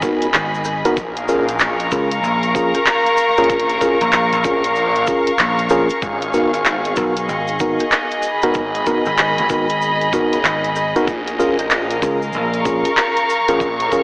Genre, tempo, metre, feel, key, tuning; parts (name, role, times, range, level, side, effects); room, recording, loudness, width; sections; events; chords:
glitch hop; 95 BPM; 4/4; swing 63% on 16ths; A4 = 438 Hz
tine electric piano; stabs; 0.0-14.0 s; B3 to A#4; -19 LUFS; equal; overdrive, fast stereo tremolo, sidechain pumping, diffuse ambient delay
phased detuned saw bass; bass; 0.0-14.0 s; G#1 to C#2; -25 LUFS; equal; phaser
electronic kick drum; drums; 0.0-14.0 s; -25 LUFS; equal; overdrive
cabasa; percussion; 0.0-14.0 s; -37 LUFS; equal
rich studio string section; texture; 0.0-14.0 s; G#4 to C#6; -18 LUFS; equal; sidechain pumping
pop drum kit; drums; 0.2-13.9 s; handclaps, hi-hat, rim click; -20 LUFS; equal; overdrive
vintage slap bass; bass; 0.3-12.8 s; G#1 to C#2; -24 LUFS; equal; tube saturation
wet plate reverb, RT60 3.4 s; dreamy mix soaked in reverb, AM radio sound; -14 LUFS; side -25 dB against mid
0.0-14.0 A section
0.0 G#m9; 1.0 A#m7; 6.0 G#m9; 11.1 A#m7